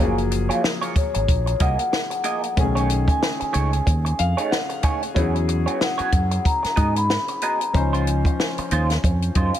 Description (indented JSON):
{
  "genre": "lush 1970s-style soul",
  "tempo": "93 BPM",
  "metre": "4/4",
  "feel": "swing 58% on 16ths",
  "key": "unclear",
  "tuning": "A4 = 440 Hz",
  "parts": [
    { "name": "clear concert grand piano", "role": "accompaniment", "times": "0.0-9.6 s", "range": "Db3 to Ab5", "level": "-27 LUFS", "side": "left 5 dB", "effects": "none" },
    { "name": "electric guitar through a small old amp", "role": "riff", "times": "0.0-9.6 s", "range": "Ab3 to Eb5", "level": "-27 LUFS", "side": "right 5 dB", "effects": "wah" },
    { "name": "fingered electric bass", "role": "bass", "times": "0.0-9.5 s", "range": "Gb1 to G#2", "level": "-22 LUFS", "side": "equal", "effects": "none" },
    { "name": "compact cocktail drum kit", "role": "drums", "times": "0.2-9.6 s", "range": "hi-hat, kick drum, snare drum", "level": "-23 LUFS", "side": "equal", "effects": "none" },
    { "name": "vibraphone with soft mallets", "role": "melody", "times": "1.0-9.6 s", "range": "Db5 to B5", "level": "-26 LUFS", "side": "left 1 dB", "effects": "slapback echo" }
  ],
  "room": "light reverb, small room ambience",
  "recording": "none",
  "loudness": "-19 LUFS",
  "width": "side -11 dB against mid",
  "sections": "0.0-9.6 A section",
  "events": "grand piano fill 3.9-5.2, 9.4",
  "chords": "0.0 Gbmaj9; 2.6 Cb13; 5.2 E69; 7.7 Dbmaj9",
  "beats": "0.64 1.28 1.93 | 2.58 3.22 3.87 4.51 | 5.16 5.81 6.45 7.10 | 7.74 8.39 9.04"
}